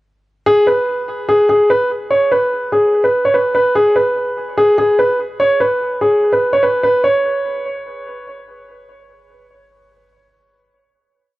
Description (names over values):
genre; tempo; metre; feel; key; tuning
hip hop, drill; 146 BPM; 4/4; half-time; unclear; A4 = 440 Hz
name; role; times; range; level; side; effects
warm concert grand piano; solo; 0.5-8.2 s; G#4 to C#5; -12 LUFS; equal; tape echo
room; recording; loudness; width
light reverb, small room ambience; dry, gritty hardware recording, transformer saturation, cassette tape; -12 LUFS; side -18 dB against mid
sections
0.5-7.0 breakdown; 7.0-10.3 final note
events
none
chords
none